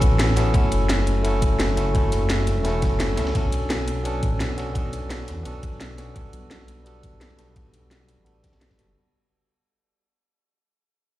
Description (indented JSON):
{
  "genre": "liquid drum and bass",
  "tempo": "171 BPM",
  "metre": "4/4",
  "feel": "swing 54% on 16ths",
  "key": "unclear",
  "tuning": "A4 = 440 Hz",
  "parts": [
    { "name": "barky tine electric piano", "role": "accompaniment", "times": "0.0-9.0 s", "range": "G3 to A4", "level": "-26 LUFS", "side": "equal", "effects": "low-pass filter, tape echo" },
    { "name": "dark detuned saw bass", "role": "bass", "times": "0.0-8.9 s", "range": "E1 to E2", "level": "-24 LUFS", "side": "equal", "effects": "none" },
    { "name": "crunchy breakbeat drum kit", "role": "drums", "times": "0.0-8.9 s", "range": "ride cymbal, snare drum", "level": "-37 LUFS", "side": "equal", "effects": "high-pass filter on cymbals, high-pass filter on snare, high-pass filter on room" },
    { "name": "drum and bass drum kit", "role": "drums", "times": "0.0-8.9 s", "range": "hi-hat, snare drum", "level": "-28 LUFS", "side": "equal", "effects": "none" },
    { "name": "electronic kick drum", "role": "drums", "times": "0.0-8.8 s", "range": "none", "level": "-22 LUFS", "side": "equal", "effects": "none" }
  ],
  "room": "light reverb, digital ambience",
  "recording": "played on a big sound system in a bare room, large studio reverb",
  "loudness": "-20 LUFS",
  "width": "side -15 dB against mid",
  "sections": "0.0-9.0 A section",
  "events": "fade-out 0.0-9.0; filter sweep on tine electric piano 0.0-9.0",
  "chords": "0.0 A69; 0.5 F#m7; 3.4 Bm7; 6.2 Gmaj7/B",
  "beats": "0.19 | 0.54 0.89 1.24 1.59 | 1.95 2.30 2.65 3.00 | 3.35 3.70 4.05 4.40 | 4.75 5.10 5.46 5.81 | 6.16 6.51 6.86 7.21 | 7.56 7.91 8.26 8.61"
}